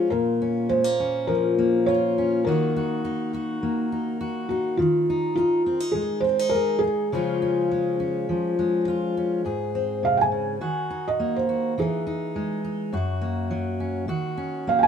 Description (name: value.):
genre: acoustic folk duo or small band.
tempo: 103 BPM.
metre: 4/4.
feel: straight.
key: Ab mixolydian.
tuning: A4 = 440 Hz.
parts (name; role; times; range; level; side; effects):
felt-muted upright piano; melody; 0.0-14.9 s; F4 to Ab5; -23 LUFS; right 1 dB; none.
fingerpicked steel-string acoustic guitar; accompaniment; 0.0-14.9 s; Gb2 to Ab4; -24 LUFS; left 1 dB; none.
room: light reverb.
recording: minimal, uncompressed stereo recording.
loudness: -22 LUFS.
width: side -8 dB against mid.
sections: 0.0-9.4 A section; 9.4-14.9 B section.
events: felt piano solo 9.4-14.9.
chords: 0.1 Bbm; 2.5 Ebm; 4.8 Ab5/Eb; 7.1 Db; 9.4 Ab; 10.6 Ebm; 11.8 Emaj7; 12.9 Gb; 14.1 Ebm7.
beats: | 0.12 0.70 1.29 1.87 | 2.45 3.04 3.62 4.21 | 4.79 5.37 5.95 6.54 | 7.12 7.70 8.28 8.87 | 9.45 10.03 10.61 11.19 | 11.77 12.36 12.94 13.52 | 14.10 14.68.